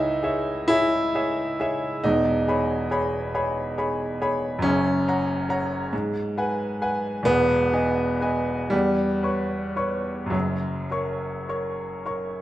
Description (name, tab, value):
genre	classical, romantic nocturne for solo piano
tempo	34-47 BPM (dotted quarters)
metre	6/8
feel	rubato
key	unclear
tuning	A4 = 440 Hz
part	clear baby grand piano	solo	0.0-12.4 s	E1 to C#6	-22 LUFS	equal	none
room	wet recital hall reverb, RT60 1.6 s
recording	nothing above 10.9 kHz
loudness	-22 LUFS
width	side -14 dB against mid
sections	0.0-12.4 A section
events	none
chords	0.0 C#m; 2.0 C#m7/E; 4.6 F#; 5.9 G#m7; 7.3 Emaj7; 8.7 C#m7b5/E; 10.3 F#